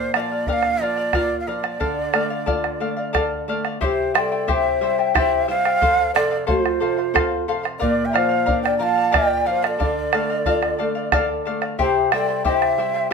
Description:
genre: andean folk, Andean ensemble.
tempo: 90 BPM.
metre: 3/4.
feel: straight.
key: unclear.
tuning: A4 = 442 Hz.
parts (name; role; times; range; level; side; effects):
breathy bright large quena; melody; 0.0-13.1 s; C5 to Bb5; -23 LUFS; right 4 dB; none.
charango; accompaniment; 0.0-13.1 s; E4 to G5; -24 LUFS; left 6 dB; none.
nylon-string guitar; accompaniment; 0.0-13.1 s; F2 to A4; -28 LUFS; equal; none.
bombo; percussion; 0.1-13.0 s; none; -23 LUFS; right 3 dB; none.
mellow hollow polished pan flute; second line; 3.8-13.1 s; F4 to F5; -24 LUFS; left 1 dB; none.
room: moderate studio reverb, RT60 0.7 s.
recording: minimal, uncompressed stereo recording.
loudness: -18 LUFS.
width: side -5 dB against mid.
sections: 0.0-3.8 A section; 3.8-13.1 A section.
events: none.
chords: 0.0 Bb; 1.8 Dm; 3.8 C; 5.8 F; 7.8 Bb; 9.8 Dm; 11.8 C.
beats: 0.47 1.14 | 1.81 2.48 3.14 | 3.81 4.48 5.14 | 5.81 6.48 7.14 | 7.81 8.47 9.14 | 9.80 10.46 11.13 | 11.79 12.45 13.11.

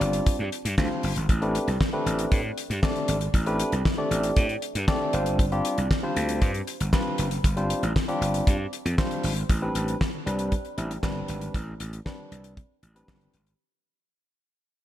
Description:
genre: early-eighties boogie funk.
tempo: 117 BPM.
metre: 4/4.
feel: straight.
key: A minor.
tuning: A4 = 435 Hz.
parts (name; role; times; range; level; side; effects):
barky tine electric piano; accompaniment; 0.0-13.4 s; G3 to A5; -29 LUFS; left 1 dB; slapback echo.
gritty slap bass; bass; 0.0-13.5 s; F#1 to A2; -28 LUFS; equal; overdrive.
damped 70s drum kit; drums; 0.0-13.6 s; handclaps, hi-hat, kick drum, snare drum; -26 LUFS; equal; none.
room: moderate lush hall reverb, RT60 1.8 s, studio ambience.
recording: big arena sound.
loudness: -23 LUFS.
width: side -12 dB against mid.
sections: 0.0-9.5 A section; 9.5-13.6 B section.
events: tine electric piano fill 4.6-5.4; fade-out 9.5-13.6.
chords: 0.0 G7sus4; 1.3 Am11; 5.1 G7sus4; 9.5 Am11.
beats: 0.26 0.78 | 1.29 1.80 2.31 2.83 | 3.34 3.85 4.37 4.88 | 5.39 5.90 6.42 6.93 | 7.44 7.96 8.47 8.98 | 9.49 10.01 10.52 11.03 | 11.54 12.06 12.57 13.08.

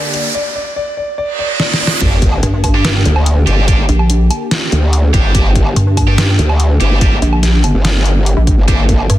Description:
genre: heavy wobble dubstep.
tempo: 144 BPM.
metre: 4/4.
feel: half-time.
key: G minor.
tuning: A4 = 439 Hz.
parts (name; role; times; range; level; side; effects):
warm concert grand piano; melody; 0.0-2.0 s; D5; -21 LUFS; left 1 dB; ping-pong delay.
supersaw chords; sustained chords; 0.0-9.2 s; D3 to A4; -23 LUFS; left 1 dB; sidechain pumping, low-pass filter.
riser, reverse cymbal and sub drop; sound effects; 0.0-3.7 s; none; -20 LUFS; right 2 dB; none.
dubstep drum kit; drums; 0.1-9.2 s; crash cymbal, hi-hat, snare drum, woodblock; -18 LUFS; equal; none.
heavy high-gain guitar; stabs; 2.0-8.8 s; G3 to G4; -21 LUFS; right 2 dB; distortion, ping-pong delay.
growl bass; bass; 2.0-9.1 s; G1 to D2; -12 LUFS; equal; chorus, overdrive.
electronic kick drum; drums; 2.0-9.0 s; none; -13 LUFS; equal; none.
pulsing pluck wobble bass; bass; 2.4-9.2 s; G1 to G2; -12 LUFS; equal; chorus, overdrive.
room: digital ambience.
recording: dense, heavily limited modern master.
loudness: -10 LUFS.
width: side -14 dB against mid.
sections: 0.0-2.0 A section; 2.0-9.2 B section.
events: build-up 0.0-2.0; riser 0.0-0.3; filter sweep on supersaw synth 0.0-2.0; reverse cymbal 1.3-2.0; drum fill 1.6-2.0; drop 2.0-9.2; impact 2.0-3.7.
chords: 0.3 N.C.; 2.0 Gm.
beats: | 0.35 0.76 1.18 1.60 | 2.01 2.43 2.85 3.26 | 3.68 4.10 4.51 4.93 | 5.35 5.76 6.18 6.60 | 7.01 7.43 7.85 8.26 | 8.68 9.10.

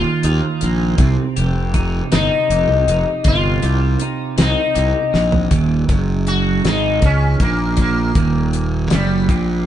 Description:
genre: psychedelic rock.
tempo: 53 BPM (dotted quarters).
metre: 6/8.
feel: straight.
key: Eb mixolydian.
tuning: A4 = 440 Hz.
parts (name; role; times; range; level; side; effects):
sitar; melody; 0.0-9.7 s; G3 to Gb4; -20 LUFS; left 4 dB; none.
twelve-string electric guitar; riff; 0.0-9.7 s; Eb2 to G4; -21 LUFS; right 6 dB; rotary speaker.
fuzz fingered electric bass; bass; 0.0-9.7 s; Eb1 to Eb2; -18 LUFS; equal; overdrive.
damped 70s drum kit; drums; 0.2-9.5 s; hi-hat, kick drum, snare drum, toms; -18 LUFS; equal; none.
room: light reverb.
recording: band playing live in one room, nothing above 10.8 kHz.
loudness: -14 LUFS.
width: side -11 dB against mid.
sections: 0.0-5.5 A section; 5.5-9.7 B section.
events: drum fill 5.1-5.5; sitar solo 5.5-9.7.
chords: 0.0 Ebsus2; 1.0 Cm; 5.5 Eb5.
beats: | 0.99 2.12 | 3.26 4.39 | 5.52 6.65 | 7.78 8.91.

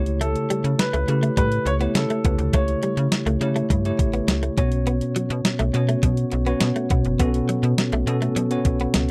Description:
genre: 1980s-style pop.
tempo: 103 BPM.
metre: 4/4.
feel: straight.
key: unclear.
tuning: A4 = 439 Hz.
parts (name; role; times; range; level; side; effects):
bell-like tine electric piano; accompaniment; 0.0-9.1 s; B2 to C#5; -26 LUFS; equal; none.
slap-like FM bass; bass; 0.0-9.1 s; F#1 to C#3; -26 LUFS; equal; none.
clean 12-bit digital drum machine; drums; 0.1-9.1 s; hi-hat, kick drum, snare drum; -25 LUFS; equal; none.
warm concert grand piano; melody; 0.2-3.1 s; A4 to C#5; -29 LUFS; equal; none.
direct-recorded clean electric guitar; riff; 0.2-9.0 s; F#3 to C#4; -31 LUFS; equal; ensemble chorus.
room: light reverb.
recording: dry, close 1970s-style studio recording.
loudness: -22 LUFS.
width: mono.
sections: 0.0-9.1 A section.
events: none.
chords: 0.0 A7/C#; 4.6 Bsus2.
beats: | 0.21 0.79 1.37 1.96 | 2.54 3.12 3.70 4.29 | 4.87 5.45 6.03 6.62 | 7.20 7.78 8.36 8.95.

